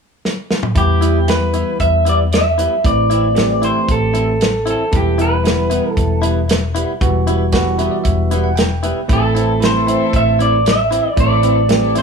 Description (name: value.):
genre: straight-eighth soul blues.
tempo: 115 BPM.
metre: 4/4.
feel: straight.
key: E minor.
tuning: A4 = 442 Hz.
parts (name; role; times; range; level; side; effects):
warm soul drum kit; drums; 0.3-12.0 s; hi-hat, kick drum, snare drum, toms; -18 LUFS; equal; none.
electric guitar through a small old amp; melody; 0.8-12.0 s; G4 to E5; -17 LUFS; equal; none.
bell-like tine electric piano; accompaniment; 0.8-12.0 s; E3 to G5; -20 LUFS; right 6 dB; none.
vintage muted fingered electric bass; bass; 0.8-12.0 s; E1 to E2; -18 LUFS; left 1 dB; none.
direct-recorded clean electric guitar; stabs; 1.0-12.0 s; E3 to E4; -24 LUFS; left 3 dB; lush chorus, tape echo.
rich symphonic string section; sustained chords; 9.1-12.0 s; C4 to A4; -26 LUFS; left 4 dB; none.
room: light reverb.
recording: small room ambience.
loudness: -13 LUFS.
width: side -5 dB against mid.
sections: 0.8-12.0 A section.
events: drum fill 0.2-0.8; tine electric piano fill 7.5-9.1.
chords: 0.0 N.C.; 0.8 Em; 2.8 Am; 4.9 Em; 9.1 Am.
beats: 0.23 | 0.75 1.28 1.80 2.32 | 2.84 3.36 3.88 4.41 | 4.93 5.45 5.97 6.49 | 7.01 7.53 8.05 8.57 | 9.09 9.62 10.13 10.65 | 11.18 11.70.